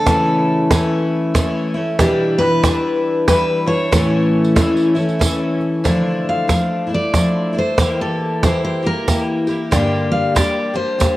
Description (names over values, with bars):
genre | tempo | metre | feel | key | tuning
acoustic folk duo or small band | 93 BPM | 3/4 | swing 61% on 8ths | D minor | A4 = 440 Hz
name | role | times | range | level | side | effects
picked steel-string acoustic guitar | melody | 0.0-11.2 s | G4 to F5 | -19 LUFS | equal | cassette tape
picked twelve-string acoustic guitar | accompaniment | 0.0-11.2 s | G2 to G4 | -17 LUFS | left 1 dB | cassette tape
cajon | percussion | 0.1-11.2 s | none | -18 LUFS | right 2 dB | none
tambourine | percussion | 0.1-11.2 s | none | -29 LUFS | right 5 dB | none
room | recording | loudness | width
wet spring reverb, RT60 1.7 s, studio reverb | home recording on cassette | -14 LUFS | side -16 dB against mid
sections
0.0-5.9 A section; 5.9-11.2 B section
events
steel-string acoustic guitar solo 5.9-11.2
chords
0.1 A/C#; 2.0 Em7/B; 3.9 A; 5.9 Dmadd9; 7.8 Edim; 9.7 Gm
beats
| 0.07 0.71 1.35 | 2.00 2.64 3.28 | 3.92 4.57 5.21 | 5.85 6.50 7.14 | 7.78 8.43 9.07 | 9.71 10.36 11.00